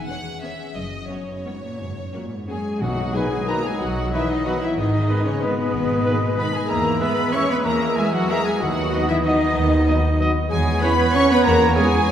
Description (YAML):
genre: classical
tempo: 166-205 BPM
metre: 3/4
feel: rubato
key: B major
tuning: A4 = 441 Hz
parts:
  - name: concert harp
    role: arpeggios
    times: 0.0-12.1 s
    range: F#2 to C#5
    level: -30 LUFS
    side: left 5 dB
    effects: none
  - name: clear symphonic violin section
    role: melody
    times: 0.1-12.1 s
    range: G#3 to F#5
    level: -38 LUFS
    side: left 2 dB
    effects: none
  - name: rich symphonic violin section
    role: second line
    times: 0.1-12.1 s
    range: F#4 to C#6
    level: -28 LUFS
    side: left 2 dB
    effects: none
  - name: rich chamber viola section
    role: accompaniment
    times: 0.1-12.1 s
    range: A#3 to C#5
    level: -27 LUFS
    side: equal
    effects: none
  - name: rich symphonic double bass section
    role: bass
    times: 0.7-11.7 s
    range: F#1 to E2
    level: -25 LUFS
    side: right 1 dB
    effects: none
  - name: warm symphonic cello section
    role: bass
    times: 0.8-12.1 s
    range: F#2 to C#4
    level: -26 LUFS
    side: right 1 dB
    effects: none
  - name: concert flute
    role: second line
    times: 2.5-12.1 s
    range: B4 to C#6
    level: -28 LUFS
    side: left 1 dB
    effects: none
  - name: mellow clarinet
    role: second line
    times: 2.5-12.1 s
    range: B3 to C#5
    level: -28 LUFS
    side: equal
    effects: none
  - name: warm oboe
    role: second line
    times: 2.8-12.1 s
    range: C#5 to E5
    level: -29 LUFS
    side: equal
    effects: none
  - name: clear bassoon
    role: accompaniment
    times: 2.8-12.1 s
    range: F#3 to B3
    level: -30 LUFS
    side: right 1 dB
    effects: none
  - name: timpani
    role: percussion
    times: 2.8-3.3 s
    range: B2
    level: -30 LUFS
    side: equal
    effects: none
  - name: dark trombone section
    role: sustained chords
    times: 3.1-12.1 s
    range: D#3 to B3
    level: -32 LUFS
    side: right 2 dB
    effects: none
  - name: warm French horn section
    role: sustained chords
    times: 3.1-12.1 s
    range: B3 to G#4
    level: -32 LUFS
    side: left 2 dB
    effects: none
  - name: clear trumpet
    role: stabs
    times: 3.2-12.1 s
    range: B4 to E5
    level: -30 LUFS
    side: right 1 dB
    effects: none
room: wet concert hall reverb, RT60 2.3 s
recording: heard from further back in the room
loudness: -17 LUFS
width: side -9 dB against mid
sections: 0.0-2.8 A section; 2.8-12.1 B section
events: none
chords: 0.0 C#m7/E; 0.8 F#sus4; 2.8 B; 4.8 G#m; 6.7 E; 8.6 B/D#; 10.5 C#m7/E